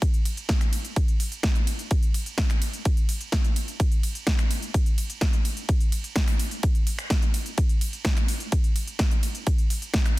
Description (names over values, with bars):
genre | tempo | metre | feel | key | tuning
EDM | 127 BPM | 4/4 | straight | none | none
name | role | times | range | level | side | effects
big-room dance drum kit | drums | 0.0-10.2 s | finger snaps, hi-hat, ride cymbal, snare drum | -30 LUFS | right 1 dB | none
electronic kick drum | drums | 0.0-10.0 s | none | -22 LUFS | equal | overdrive
room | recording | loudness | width
little or no reverb | dense, heavily limited modern master | -22 LUFS | side -19 dB against mid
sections
0.0-10.2 A section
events
none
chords
none